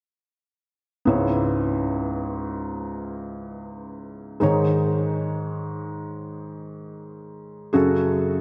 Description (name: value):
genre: pop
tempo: free time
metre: none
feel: none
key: C# minor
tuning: A4 = 442 Hz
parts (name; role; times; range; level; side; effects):
- felt-muted upright piano; accompaniment; 1.1-8.4 s; C#2 to C#5; -25 LUFS; equal; none
room: wet lush hall reverb, RT60 2.6 s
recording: dreamy mix soaked in reverb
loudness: -24 LUFS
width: mono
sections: 1.1-8.4 A section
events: none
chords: 1.1 C#m7; 4.4 G#sus4; 7.7 F#madd9